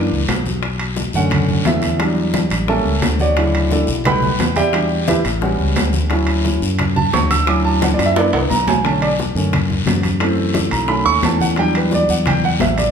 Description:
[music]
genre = Afro-Cuban jazz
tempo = 175 BPM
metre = 4/4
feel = straight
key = D major, B minor from 8.8 s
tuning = A4 = 445 Hz
[part]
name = warm grand piano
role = accompaniment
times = 0.0-12.9 s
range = C#3 to E6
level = -18 LUFS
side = right 2 dB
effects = none
[part]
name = modern bright fingered electric bass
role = bass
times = 0.0-12.9 s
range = A1 to F#2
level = -19 LUFS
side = left 1 dB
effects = none
[part]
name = bongos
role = percussion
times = 0.1-12.8 s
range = none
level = -25 LUFS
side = left 5 dB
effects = none
[part]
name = congas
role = percussion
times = 0.1-12.9 s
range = none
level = -25 LUFS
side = left 2 dB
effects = none
[part]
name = guiro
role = percussion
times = 0.3-12.9 s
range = none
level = -29 LUFS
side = left 4 dB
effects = none
[part]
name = timbales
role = percussion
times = 0.3-12.9 s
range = none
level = -25 LUFS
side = right 2 dB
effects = none
[sound]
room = wet large studio reverb, RT60 1.2 s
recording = band playing live in one room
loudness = -14 LUFS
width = side -7 dB against mid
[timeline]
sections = 0.0-8.8 A section; 8.8-12.9 A section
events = grand piano solo 0.0-12.9; drum fill 8.0-8.8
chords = 0.0 F#7b13; 0.6 Bm7; 2.0 Em7; 2.7 A7b9; 3.4 Dmaj9; 4.1 B7b13; 4.7 Em7; 5.4 A13; 6.1 Dmaj7; 8.2 F#aug7; 8.8 Bm9; 10.2 F#m7b5; 10.9 B7; 11.6 Em9

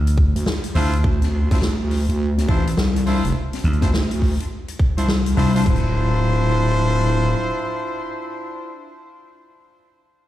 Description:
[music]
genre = glitch hop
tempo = 104 BPM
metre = 4/4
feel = swing 63% on 16ths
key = D minor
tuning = A4 = 439 Hz
[part]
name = vintage slap bass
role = bass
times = 0.0-5.6 s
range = C2 to D2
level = -17 LUFS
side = equal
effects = none
[part]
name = swinging big-band drum kit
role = drums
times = 0.1-5.8 s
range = crash cymbal, hi-hat, snare drum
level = -27 LUFS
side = left 2 dB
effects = none
[part]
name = electronic kick drum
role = drums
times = 0.2-5.8 s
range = none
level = -17 LUFS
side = equal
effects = none
[part]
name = wobble bass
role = bass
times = 0.4-7.3 s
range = D1 to D2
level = -19 LUFS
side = equal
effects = chorus
[part]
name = bright horn section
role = stabs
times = 0.8-8.7 s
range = D4 to C5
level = -25 LUFS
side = left 1 dB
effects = sidechain pumping, digital delay
[sound]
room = small room ambience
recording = played on a big sound system in a bare room, large studio reverb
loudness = -17 LUFS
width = side -13 dB against mid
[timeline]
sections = 0.0-5.7 A section; 5.7-8.0 B section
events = drop 0.0-5.7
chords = 0.0 Dm9

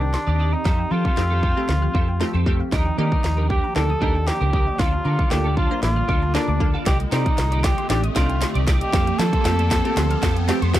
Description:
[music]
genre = dance-pop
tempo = 116 BPM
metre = 4/4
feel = straight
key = unclear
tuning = A4 = 440 Hz
[part]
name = dark cor anglais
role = melody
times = 0.0-10.7 s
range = D4 to A4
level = -25 LUFS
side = equal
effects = slapback echo
[part]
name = wavetable chord stab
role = accompaniment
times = 0.0-10.8 s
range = Eb3 to D5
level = -27 LUFS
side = equal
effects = sidechain pumping
[part]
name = ethereal airy pad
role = sustained chords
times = 0.0-10.8 s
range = D3 to D5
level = -31 LUFS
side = equal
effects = ensemble chorus, built-in reverb, sidechain pumping
[part]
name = glassy wavetable pluck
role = arpeggios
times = 0.0-10.8 s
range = Eb5 to F6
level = -36 LUFS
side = left 2 dB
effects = chorus, sidechain pumping, slapback echo
[part]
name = twelve-string electric guitar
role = riff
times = 0.0-10.8 s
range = C4 to D5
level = -31 LUFS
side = right 5 dB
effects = ensemble chorus
[part]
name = vintage muted fingered electric bass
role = bass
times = 0.0-10.8 s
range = A1 to F3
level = -22 LUFS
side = equal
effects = sidechain pumping
[part]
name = riser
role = sound effects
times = 2.1-10.8 s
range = none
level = -33 LUFS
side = right 1 dB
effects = none
[part]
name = house drum kit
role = drums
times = 0.1-10.8 s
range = hi-hat, kick drum, snare drum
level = -22 LUFS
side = equal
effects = none
[sound]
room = little or no reverb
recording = dry, close 1970s-style studio recording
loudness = -18 LUFS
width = side -13 dB against mid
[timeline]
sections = 0.0-10.8 A section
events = build-up 0.0-10.8; drum fill 0.0-10.8; riser 2.1-10.8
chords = 0.0 Cmadd9; 0.7 Fadd9; 2.7 Ebmaj7; 4.8 Bbmaj7/D; 6.9 Cmadd9; 8.9 Fadd9

